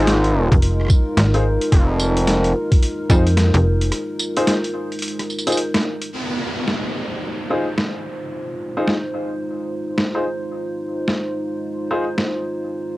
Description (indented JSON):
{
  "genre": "glitch hop",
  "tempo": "109 BPM",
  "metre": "4/4",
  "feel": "swing 62% on 16ths",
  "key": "F minor pentatonic",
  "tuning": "A4 = 440 Hz",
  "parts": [
    { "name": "dark analog pad", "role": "sustained chords", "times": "0.0-13.0 s", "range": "Ab3 to C5", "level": "-25 LUFS", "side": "equal", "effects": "chorus, sidechain pumping, cassette tape" },
    { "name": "clear grand piano", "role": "stabs", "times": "0.0-12.0 s", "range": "Eb4 to C5", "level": "-23 LUFS", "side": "left 1 dB", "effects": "sidechain pumping, cassette tape, analog delay" },
    { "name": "gritty driven synth bass", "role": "bass", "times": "0.0-2.5 s", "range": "F1 to Ab1", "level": "-17 LUFS", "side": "equal", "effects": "none" },
    { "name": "boom bap sampler-style drum kit", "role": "drums", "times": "0.1-12.3 s", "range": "hi-hat, rim click, snare drum, tambourine", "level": "-22 LUFS", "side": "equal", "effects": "overdrive, studio reverb, cassette tape" },
    { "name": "slap-like FM bass", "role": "bass", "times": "0.5-3.9 s", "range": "F1 to F2", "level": "-16 LUFS", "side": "equal", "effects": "none" },
    { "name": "electronic kick drum", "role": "drums", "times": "0.5-3.2 s", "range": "none", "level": "-14 LUFS", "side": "equal", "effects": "overdrive, studio reverb, cassette tape" },
    { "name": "downlifter", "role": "sound effects", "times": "6.1-10.5 s", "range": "none", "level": "-28 LUFS", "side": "equal", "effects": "none" }
  ],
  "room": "moderate booth ambience, RT60 0.2 s",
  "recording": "home recording on cassette",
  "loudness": "-17 LUFS",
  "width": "side -19 dB against mid",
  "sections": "0.0-6.1 A section; 6.1-13.0 B section",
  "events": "break 3.9-6.1; band accent 5.7",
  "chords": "0.0 Fm7",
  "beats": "0.07 0.62 1.17 | 1.72 2.27 2.82 3.37 | 3.92 4.47 5.02 5.58 | 6.12 6.68 7.23 7.78 | 8.33 8.88 9.43 9.98 | 10.53 11.08 11.63 12.18 | 12.73"
}